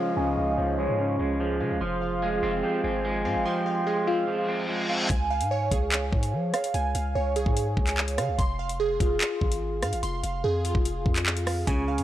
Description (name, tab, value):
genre	hip hop, drill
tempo	146 BPM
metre	4/4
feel	half-time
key	F minor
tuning	A4 = 440 Hz
part	soft octave-layered synth lead	second line	0.0-4.3 s	Db5 to Ab5	-32 LUFS	left 2 dB	chorus, phaser, tape echo
part	electric guitar at the edge of break-up	accompaniment	0.0-5.1, 11.7-12.0 s	Db3 to C4	-28 LUFS	right 2 dB	vibrato effect, low-pass filter
part	airy breathy pad	sustained chords	0.0-5.1 s	Db3 to F5	-37 LUFS	left 1 dB	none
part	glassy digital keys	arpeggios	0.0-12.0 s	F4 to C6	-29 LUFS	right 2 dB	chorus, phaser, low-pass filter, tape echo
part	downlifter and reverse cymbal	sound effects	4.4-5.1 s	none	-34 LUFS	left 1 dB	none
part	long sustained 808-style bass	bass	0.2-12.0 s	F1 to F3	-30 LUFS	equal	none
part	drill drum kit	drums	5.1-12.0 s	handclaps, hi-hat, kick drum, rim click	-26 LUFS	equal	none
room	light reverb, digital ambience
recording	dry, gritty hardware recording, cassette tape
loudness	-24 LUFS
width	side -12 dB against mid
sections	0.0-5.1 A section; 5.1-12.0 B section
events	filter sweep 0.0-5.1; reverse cymbal 4.4-5.1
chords	0.0 Db; 1.8 Fm; 5.1 Db; 8.4 Fm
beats	| 0.17 0.58 0.99 1.40 | 1.81 2.22 2.63 3.04 | 3.46 3.87 4.28 4.69 | 5.10 5.51 5.92 6.33 | 6.74 7.15 7.57 7.98 | 8.39 8.80 9.21 9.62 | 10.03 10.44 10.85 11.26 | 11.68